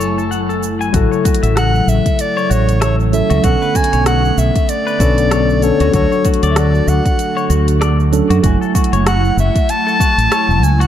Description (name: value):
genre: sunset chillout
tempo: 96 BPM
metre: 4/4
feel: swing 57% on 16ths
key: A major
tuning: A4 = 440 Hz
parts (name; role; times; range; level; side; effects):
- clear soprano saxophone; melody; 0.0-10.9 s; A4 to A5; -18 LUFS; left 1 dB; tape echo
- tine electric piano; accompaniment; 0.0-10.9 s; C#3 to G#5; -19 LUFS; moving between left 8 dB and right 7 dB; auto-pan
- airy breathy pad; sustained chords; 0.0-10.9 s; C#3 to G#5; -22 LUFS; right 1 dB; chorus
- clean electric guitar; arpeggios; 0.0-10.9 s; F#4 to G#5; -24 LUFS; left 5 dB; spring reverb, tape echo
- mellow fretless electric bass; bass; 0.0-10.8 s; E1 to F#2; -15 LUFS; equal; none
- deep house drum kit; drums; 0.0-10.9 s; cabasa, hi-hat, rim click; -24 LUFS; right 2 dB; none
- electronic kick drum; drums; 0.9-10.1 s; none; -16 LUFS; equal; none
room: moderate plate reverb, RT60 2.4 s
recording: dark, warm production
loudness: -12 LUFS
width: side -10 dB against mid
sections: 0.9-10.9 A section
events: none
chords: 0.0 F#m9; 0.9 A6; 3.4 Bm9; 5.9 Dmaj7; 8.4 F#m9